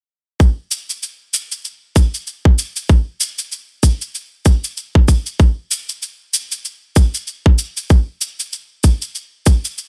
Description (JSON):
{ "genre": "organic downtempo", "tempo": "96 BPM", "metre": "4/4", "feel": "swing 58% on 16ths", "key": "none", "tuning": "none", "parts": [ { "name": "cabasa", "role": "drums", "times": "0.4-9.9 s", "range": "none", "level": "-24 LUFS", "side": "equal", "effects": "none" }, { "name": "electronic kick drum", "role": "drums", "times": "0.4-9.6 s", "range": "none", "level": "-13 LUFS", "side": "equal", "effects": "overdrive" } ], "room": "little or no reverb", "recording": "none", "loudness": "-17 LUFS", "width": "mono", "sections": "0.4-9.9 A section", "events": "none", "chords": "none", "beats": "| 0.40 1.02 1.65 2.27 | 2.90 3.52 4.15 4.77 | 5.40 6.02 6.65 7.27 | 7.90 8.52 9.15 9.77" }